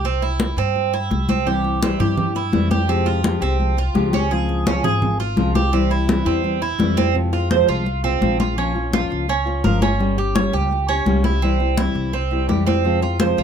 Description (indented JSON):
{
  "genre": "latin, Cuban son and guajira",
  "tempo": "169 BPM",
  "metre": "4/4",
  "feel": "straight",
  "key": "F minor",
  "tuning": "A4 = 440 Hz",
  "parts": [
    { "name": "Cuban tres", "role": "arpeggios", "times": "0.0-13.4 s", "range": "C4 to Db5", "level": "-22 LUFS", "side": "right 7 dB", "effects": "none" },
    { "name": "upright bass", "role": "bass", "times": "0.0-13.4 s", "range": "G1 to G2", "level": "-22 LUFS", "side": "equal", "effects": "none" },
    { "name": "congas", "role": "percussion", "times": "0.0-13.4 s", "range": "none", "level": "-23 LUFS", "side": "left 3 dB", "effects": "none" },
    { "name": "nylon-string guitar", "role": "accompaniment", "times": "1.5-13.4 s", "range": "C3 to G4", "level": "-22 LUFS", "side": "left 3 dB", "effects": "none" }
  ],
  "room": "light reverb",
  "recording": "close, detailed microphones",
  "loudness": "-17 LUFS",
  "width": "side -8 dB against mid",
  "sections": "0.0-7.2 A section; 7.2-13.4 B section",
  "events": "none",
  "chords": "0.0 C; 2.9 Fmadd9; 4.3 Dbmaj7; 5.7 C; 7.2 Fm; 8.6 Bbm; 10.0 Gdim; 11.4 C; 12.8 Fm",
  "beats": "| 0.04 0.40 0.76 1.11 | 1.47 1.82 2.18 2.53 | 2.89 3.24 3.60 3.95 | 4.31 4.66 5.02 5.38 | 5.73 6.09 6.44 6.80 | 7.15 7.51 7.86 8.22 | 8.57 8.93 9.29 9.64 | 10.00 10.36 10.71 11.07 | 11.42 11.78 12.13 12.49 | 12.85 13.20"
}